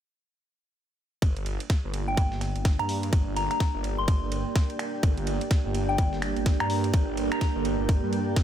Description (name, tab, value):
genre	bass house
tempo	126 BPM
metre	4/4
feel	swing 60% on 16ths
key	G minor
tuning	A4 = 439 Hz
part	dark analog pad	sustained chords	1.6-8.4 s	Bb3 to D5	-34 LUFS	right 4 dB	chorus, sidechain pumping
part	phased detuned saw bass	bass	1.2-8.4 s	G1 to G2	-30 LUFS	equal	phaser, overdrive, sidechain pumping
part	dusty soul sampler-style drum kit	drums	1.2-8.4 s	hi-hat, ride cymbal, snare drum	-39 LUFS	right 3 dB	sidechain pumping on cymbals, high-pass filter on cymbals, high-pass filter on snare, sidechain pumping on hats, high-pass filter on hats
part	electronic kick drum	drums	1.2-8.4 s	none	-23 LUFS	equal	overdrive
part	granular cloud pad	texture	2.5-8.4 s	D4 to G5	-34 LUFS	right 4 dB	built-in reverb, sidechain pumping
part	soft synth bell	melody	2.1-7.7 s	G5 to C6	-32 LUFS	left 3 dB	chorus, phaser
part	electronic finger snaps	drums	2.4-7.4 s	none	-35 LUFS	equal	low-pass filter on snare
room	little or no reverb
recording	none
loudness	-24 LUFS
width	side -10 dB against mid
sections	1.2-8.4 A section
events	filter sweep on drum 1.2-8.4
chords	1.2 Gm